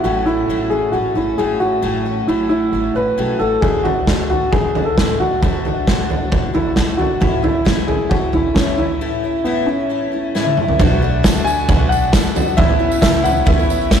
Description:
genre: indie folk with a building arrangement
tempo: 134 BPM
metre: 4/4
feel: straight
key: A major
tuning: A4 = 441 Hz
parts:
  - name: warm upright piano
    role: melody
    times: 0.0-14.0 s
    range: B3 to G#5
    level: -19 LUFS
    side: equal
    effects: none
  - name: fingerpicked steel-string acoustic guitar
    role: accompaniment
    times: 0.0-3.6 s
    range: A2 to A4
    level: -25 LUFS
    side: left 2 dB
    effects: none
  - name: picked twelve-string acoustic guitar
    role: accompaniment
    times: 0.0-14.0 s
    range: A2 to F#4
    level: -22 LUFS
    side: left 2 dB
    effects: none
  - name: upright bass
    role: bass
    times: 0.0-14.0 s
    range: A1 to F#2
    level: -26 LUFS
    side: right 1 dB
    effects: none
  - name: loose indie drum kit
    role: drums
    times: 3.6-14.0 s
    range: kick drum, snare drum, toms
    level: -16 LUFS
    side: equal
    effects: none
  - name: pipe organ, trumpet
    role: sustained chords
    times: 10.8-14.0 s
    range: A3 to D5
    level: -32 LUFS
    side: right 2 dB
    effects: none
  - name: tambourine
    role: percussion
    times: 11.2-14.0 s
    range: none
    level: -32 LUFS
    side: right 6 dB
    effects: none
room: moderate cathedral reverb, RT60 4.2 s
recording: rough rehearsal-room recording, tube saturation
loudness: -14 LUFS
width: side -8 dB against mid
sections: 0.0-10.8 A section; 10.8-14.0 B section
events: break 9.0-10.8; drum fill 10.4-10.8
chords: 0.0 F#m/A; 3.6 D/A; 7.2 A; 10.8 Bm7; 12.6 Aadd9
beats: | 0.04 0.49 0.94 1.39 | 1.84 2.29 2.73 3.18 | 3.63 4.08 4.53 4.98 | 5.43 5.87 6.32 6.77 | 7.22 7.67 8.12 8.56 | 9.01 9.46 9.90 10.35 | 10.80 11.24 11.69 12.14 | 12.58 13.03 13.47 13.92

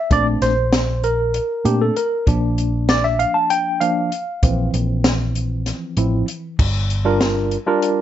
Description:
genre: progressive instrumental, band music in an uneven meter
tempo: 194 BPM (eighths)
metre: 7/8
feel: straight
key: Bb lydian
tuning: A4 = 439 Hz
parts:
  - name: tine electric piano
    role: accompaniment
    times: 0.0-8.0 s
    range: E3 to A5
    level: -19 LUFS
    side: equal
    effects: medium stereo tremolo
  - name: hollow-body short-scale picked electric bass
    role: bass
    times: 0.1-7.6 s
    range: G1 to Bb2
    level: -20 LUFS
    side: equal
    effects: none
  - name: open jazz drum kit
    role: drums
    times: 0.1-8.0 s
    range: crash cymbal, hi-hat, kick drum, snare drum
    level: -20 LUFS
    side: equal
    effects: none
room: light reverb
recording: nothing above 7.6 kHz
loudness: -16 LUFS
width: side -11 dB against mid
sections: 0.0-6.6 A section; 6.6-8.0 B section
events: tine electric piano solo 0.0-6.6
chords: 0.1 Bbmaj7; 2.3 Bb6; 4.4 Fmaj7(no3); 6.6 Gm7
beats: | 0.11 0.41 0.72 1.03 1.34 1.65 1.96 | 2.27 2.58 2.89 3.20 3.50 3.81 4.12 | 4.43 4.74 5.05 5.36 5.67 5.97 6.28 | 6.59 6.90 7.21 7.52 7.83

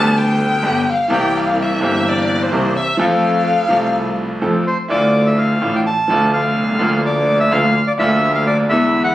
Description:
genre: tango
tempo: 127 BPM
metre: 4/4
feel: rubato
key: F major, D minor from 4.9 s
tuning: A4 = 439 Hz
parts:
  - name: dark violin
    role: second line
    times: 0.0-4.4 s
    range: C5 to A5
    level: -18 LUFS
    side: left 3 dB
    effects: none
  - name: bright grand piano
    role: accompaniment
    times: 0.0-9.1 s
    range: G1 to A4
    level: -18 LUFS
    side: right 1 dB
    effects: none
  - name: clear double bass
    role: bass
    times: 0.0-9.1 s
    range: G1 to F2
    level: -20 LUFS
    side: equal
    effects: none
  - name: bandoneon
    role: melody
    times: 4.7-9.1 s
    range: C5 to A5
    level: -16 LUFS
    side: equal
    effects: none
room: moderate large studio reverb, RT60 1.2 s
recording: recorded on a phone in the room, studio reverb, compression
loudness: -14 LUFS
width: side -14 dB against mid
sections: 0.0-4.9 A section; 4.9-9.1 B section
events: violin solo 0.0-4.9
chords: 0.0 G; 1.1 C7; 3.0 F; 4.9 Dmadd9; 6.8 Bb/D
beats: 0.16 0.63 | 1.11 1.58 2.05 2.52 | 3.00 3.47 3.94 4.42 | 4.90 5.38 5.86 6.34 | 6.82 7.29 7.76 8.23 | 8.71

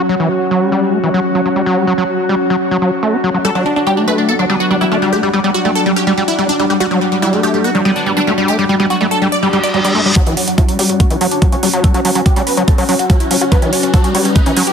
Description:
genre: psychedelic trance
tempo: 143 BPM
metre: 4/4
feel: straight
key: F# phrygian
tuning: A4 = 440 Hz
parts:
  - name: evolving wavetable pad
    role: sustained chords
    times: 0.0-14.7 s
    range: F#3 to F#4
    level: -20 LUFS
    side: equal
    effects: chorus, built-in reverb, vintage 12-bit sampler grit, sidechain pumping
  - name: overdriven acid bass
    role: riff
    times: 0.0-14.6 s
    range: E3 to G4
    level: -16 LUFS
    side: equal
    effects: distortion, auto-pan, cassette tape, sidechain pumping, dub echo
  - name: airy breathy pad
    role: texture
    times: 0.0-14.7 s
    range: C#4 to D5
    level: -21 LUFS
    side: left 1 dB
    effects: chorus, sidechain pumping
  - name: supersaw stab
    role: melody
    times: 3.4-14.7 s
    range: F#3 to D5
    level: -16 LUFS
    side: equal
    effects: phaser, sidechain pumping, low-pass filter, dub echo
  - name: metallic wobble bass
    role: second line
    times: 4.5-9.0 s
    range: B3 to C#4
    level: -27 LUFS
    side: left 3 dB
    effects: wide subtle chorus, sidechain pumping, high-pass filter, dub echo
  - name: reverse cymbal and riser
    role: sound effects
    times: 9.5-14.7 s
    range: none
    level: -22 LUFS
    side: left 1 dB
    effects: none
  - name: electronic hi-hat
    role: drums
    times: 10.2-14.7 s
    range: none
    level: -20 LUFS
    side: right 3 dB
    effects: overdrive, high-pass filter on hats, high-pass filter on snare, high-pass filter on cymbals
  - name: electronic kick drum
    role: drums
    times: 10.2-14.4 s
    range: none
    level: -12 LUFS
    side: equal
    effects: overdrive
room: light reverb, digital ambience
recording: heavily compressed radio sound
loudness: -11 LUFS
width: side -7 dB against mid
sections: 0.0-10.2 A section; 10.2-14.7 B section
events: filter sweep on acid bass 0.0-10.2; reverse cymbal 9.5-10.2; build-up 10.2-14.7; riser 10.2-14.7; filter sweep on supersaw synth 10.2-14.7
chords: 0.0 F#5; 3.4 G5; 10.2 F#5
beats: | 0.09 0.51 0.93 1.35 | 1.77 2.19 2.61 3.03 | 3.45 3.87 4.29 4.71 | 5.12 5.54 5.96 6.38 | 6.80 7.22 7.64 8.06 | 8.48 8.90 9.32 9.74 | 10.16 10.58 11.00 11.42 | 11.84 12.26 12.68 13.10 | 13.52 13.94 14.36

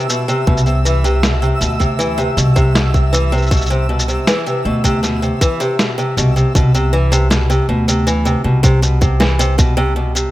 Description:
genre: folktronica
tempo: 79 BPM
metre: 4/4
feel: straight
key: C major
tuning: A4 = 440 Hz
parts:
  - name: picked acoustic archtop guitar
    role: arpeggios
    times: 0.0-10.3 s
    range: B2 to E3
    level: -17 LUFS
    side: equal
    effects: tape echo
  - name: electronic shaker and snare drum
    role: drums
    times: 0.0-10.3 s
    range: none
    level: -19 LUFS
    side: equal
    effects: none
  - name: twinkling granular texture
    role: texture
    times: 0.0-6.6 s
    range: E5 to E6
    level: -26 LUFS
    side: right 1 dB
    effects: built-in reverb
  - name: upright bass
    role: bass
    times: 0.5-10.2 s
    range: C2 to D2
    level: -15 LUFS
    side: equal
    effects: none
  - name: electronic kick drum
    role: drums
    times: 0.5-9.7 s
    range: none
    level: -14 LUFS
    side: equal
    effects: none
room: light reverb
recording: none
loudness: -12 LUFS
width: side -16 dB against mid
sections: 0.0-6.5 A section; 6.5-10.3 B section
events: none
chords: 0.0 Cmaj7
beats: | 0.47 1.23 1.99 2.75 | 3.51 4.27 5.03 5.79 | 6.55 7.31 8.07 8.83 | 9.59

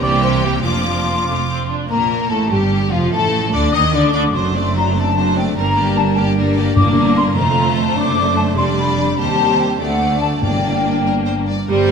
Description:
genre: quick classical-period movement for symphony orchestra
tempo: 98 BPM (dotted quarters)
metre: 6/8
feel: straight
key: Bb major, G minor from 6.8 s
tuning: A4 = 440 Hz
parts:
  - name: clear chamber violin section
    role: melody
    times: 0.0-11.9 s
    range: F4 to D6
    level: -27 LUFS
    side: left 3 dB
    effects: none
  - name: dark cor anglais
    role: second line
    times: 0.0-1.7 s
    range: F4 to D5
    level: -21 LUFS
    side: equal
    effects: none
  - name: rich chamber violin section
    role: second line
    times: 0.0-11.9 s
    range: C4 to Eb5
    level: -24 LUFS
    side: left 5 dB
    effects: none
  - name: clear studio viola section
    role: accompaniment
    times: 0.0-11.9 s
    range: E3 to Eb4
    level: -22 LUFS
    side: right 3 dB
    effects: none
  - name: clear chamber double bass section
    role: bass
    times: 0.0-11.9 s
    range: F1 to Eb2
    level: -21 LUFS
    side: right 4 dB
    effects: none
  - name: rich studio cello section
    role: bass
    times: 0.0-11.9 s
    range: D2 to Eb3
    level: -22 LUFS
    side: right 2 dB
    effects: none
  - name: hollow large flute ensemble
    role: second line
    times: 1.1-11.5 s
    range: F5 to Eb6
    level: -20 LUFS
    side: left 2 dB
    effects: none
  - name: dark French horn section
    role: sustained chords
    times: 1.9-11.5 s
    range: F3 to Eb4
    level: -23 LUFS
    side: left 5 dB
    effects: none
  - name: timpani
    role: percussion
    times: 6.8-7.3, 10.4-11.0 s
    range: G2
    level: -22 LUFS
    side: left 1 dB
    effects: none
room: wet concert hall reverb, RT60 1.8 s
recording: minimal, uncompressed stereo recording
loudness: -14 LUFS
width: side -6 dB against mid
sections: 0.0-1.9 A section; 1.9-11.7 B section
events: none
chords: 0.0 C7; 0.6 Bb/F; 1.3 F; 1.9 Bb5; 3.1 Asus4; 4.3 D7/F#; 5.6 Gm; 7.4 F; 8.0 D/F#; 8.6 G5/F; 9.2 Cm/Eb; 9.8 D; 10.4 Gm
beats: 0.03 | 0.65 1.27 | 1.90 2.52 | 3.13 3.74 | 4.35 4.96 | 5.57 6.17 | 6.77 7.37 | 7.98 8.58 | 9.19 9.80 | 10.43 11.06 | 11.69

